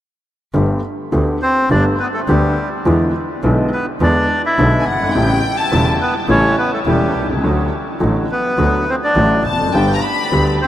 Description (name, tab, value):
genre	tango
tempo	104 BPM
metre	4/4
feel	rubato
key	G major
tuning	A4 = 440 Hz
part	warm upright piano	accompaniment	0.5-10.6 s	E1 to G4	-17 LUFS	left 1 dB	none
part	bright double bass	bass	0.5-10.6 s	E1 to E2	-19 LUFS	right 1 dB	none
part	bandoneon	melody	1.4-10.7 s	G3 to E5	-18 LUFS	equal	none
part	warm studio violin section	second line	4.8-5.9, 9.5-10.5 s	F#5 to B5	-22 LUFS	left 2 dB	none
room	wet huge ambient reverb, RT60 7.8 s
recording	in a vast, echoing space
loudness	-13 LUFS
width	side -12 dB against mid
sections	0.6-10.7 A section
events	none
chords	0.6 Gadd9; 2.9 E7; 5.2 A7; 7.4 D; 9.7 G